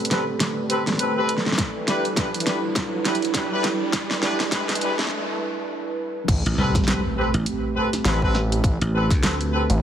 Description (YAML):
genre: glitch hop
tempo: 102 BPM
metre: 4/4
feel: swing 59% on 16ths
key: A minor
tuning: A4 = 439 Hz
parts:
  - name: dark analog pad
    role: sustained chords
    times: 0.0-9.8 s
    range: G3 to B4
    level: -28 LUFS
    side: right 3 dB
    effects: chorus, sidechain pumping
  - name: riser and impact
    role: sound effects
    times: 0.0-8.6 s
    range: none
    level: -31 LUFS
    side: equal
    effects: none
  - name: warbly tape-like pad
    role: texture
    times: 0.0-5.1 s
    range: E4 to G5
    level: -33 LUFS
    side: right 2 dB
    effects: none
  - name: clear horn section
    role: stabs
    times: 0.1-9.6 s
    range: C4 to B4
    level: -26 LUFS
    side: left 1 dB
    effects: sidechain pumping, low-pass filter, digital delay
  - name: pop drum kit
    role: drums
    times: 0.1-9.8 s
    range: crash cymbal, hi-hat, snare drum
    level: -25 LUFS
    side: equal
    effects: studio reverb
  - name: electronic kick drum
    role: drums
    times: 1.6-9.2 s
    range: none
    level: -23 LUFS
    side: equal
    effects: studio reverb
  - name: gritty driven synth bass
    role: bass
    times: 6.3-9.8 s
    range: A1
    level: -22 LUFS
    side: equal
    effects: none
  - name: dry thumbed slap bass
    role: bass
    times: 6.5-9.7 s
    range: A1 to D2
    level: -23 LUFS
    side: equal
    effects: none
room: light reverb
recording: heavily compressed radio sound, high-pass filter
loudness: -20 LUFS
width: side -9 dB against mid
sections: 0.0-6.3 A section; 6.3-9.8 B section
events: build-up 0.0-6.3; drum fill 0.0-5.1; riser 0.0-5.1; break 5.1-6.3; drop 6.3-9.8; impact 6.3-8.6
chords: 0.0 Am9; 1.6 Em7; 6.3 Am9